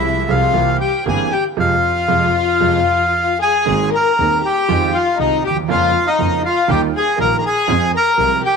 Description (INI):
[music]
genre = tango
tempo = 118 BPM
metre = 4/4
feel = rubato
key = F harmonic minor, Ab major from 3.7 s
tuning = A4 = 440 Hz
[part]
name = bandoneon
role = melody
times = 0.0-8.6 s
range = Eb4 to Bb5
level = -16 LUFS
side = right 1 dB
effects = none
[part]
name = warm chamber violin section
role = second line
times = 0.0-8.6 s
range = Eb4 to Bb4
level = -19 LUFS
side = left 13 dB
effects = none
[part]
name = warm concert grand piano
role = accompaniment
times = 0.0-8.4 s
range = Eb1 to Ab4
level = -21 LUFS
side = right 11 dB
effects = none
[part]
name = rich double bass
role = bass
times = 0.0-8.4 s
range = G1 to F2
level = -23 LUFS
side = equal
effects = none
[part]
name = rich studio string section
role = stabs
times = 3.7-8.4 s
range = G3 to Bb4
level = -32 LUFS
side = right 11 dB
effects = none
[sound]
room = light reverb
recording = 1960s-style stereo with parts hard left and right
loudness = -13 LUFS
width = side -5 dB against mid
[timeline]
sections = 0.0-3.7 A section; 3.7-8.6 B section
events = band accent 1.6-3.7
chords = 0.0 Fm/C; 0.5 C7; 1.6 Fm; 3.7 Abadd9; 4.7 Fm7; 5.7 Bbm7/F; 6.7 Ebadd9; 7.7 Fm